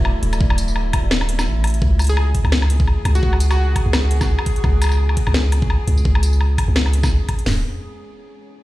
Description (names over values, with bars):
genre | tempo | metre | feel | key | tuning
half-time drum and bass | 170 BPM | 4/4 | swing 57% on 16ths, half-time | C# phrygian | A4 = 443 Hz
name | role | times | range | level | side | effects
deep dark ambient pad | sustained chords | 0.0-1.8, 7.6 s | A3 to D5 | -33 LUFS | right 2 dB | chorus, built-in reverb, vintage 12-bit sampler grit, sidechain pumping
long sustained 808-style bass | bass | 0.0-7.6 s | C#1 to C#2 | -17 LUFS | equal | none
metallic inharmonic drone | texture | 0.0-7.5 s | E4 to G#4 | -31 LUFS | left 1 dB | chorus, built-in reverb
drum and bass drum kit | drums | 0.1-7.4 s | hi-hat, snare drum, tambourine, woodblock | -24 LUFS | left 2 dB | none
drum and bass drum kit | drums | 0.4-7.6 s | hi-hat, kick drum, snare drum, toms | -19 LUFS | equal | none
plucky unison lead | melody | 2.1-3.8 s | F#4 to G#4 | -30 LUFS | equal | dub echo
room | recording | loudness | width
digital ambience | played on a big sound system in a bare room, large studio reverb | -15 LUFS | side -17 dB against mid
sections
0.0-1.8 A section; 1.8-7.5 B section; 7.5-8.6 C section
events
drop 0.0-1.8; kick drops out 1.1-1.8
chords
0.0 Dadd9; 1.8 C#5; 7.5 C#m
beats
0.05 | 0.41 0.76 1.11 1.46 | 1.82 2.17 2.52 2.88 | 3.23 3.58 3.93 4.29 | 4.64 4.99 5.35 5.70 | 6.05 6.41 6.76 7.11 | 7.46